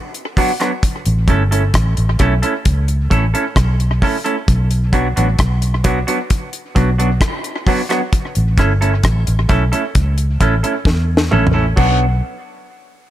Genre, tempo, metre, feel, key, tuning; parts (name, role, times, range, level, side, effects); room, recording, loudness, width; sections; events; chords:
roots reggae; 66 BPM; 4/4; straight; B minor; A4 = 441 Hz
deep reggae drum kit; drums; 0.1-12.0 s; crash cymbal, hi-hat, kick drum, rim click, snare drum, toms; -17 LUFS; equal; tape echo
semi-hollow electric guitar; accompaniment; 0.4-12.0 s; F#3 to A4; -19 LUFS; right 2 dB; tape echo
vintage muted fingered electric bass; bass; 1.1-12.2 s; G1 to E2; -15 LUFS; equal
small room ambience; -13 LUFS; side -13 dB against mid
0.0-11.8 A section; 11.8-13.1 B section
drum fill 10.9-11.8
0.0 Bm; 0.8 A; 4.5 Bm; 8.1 A; 11.8 Bm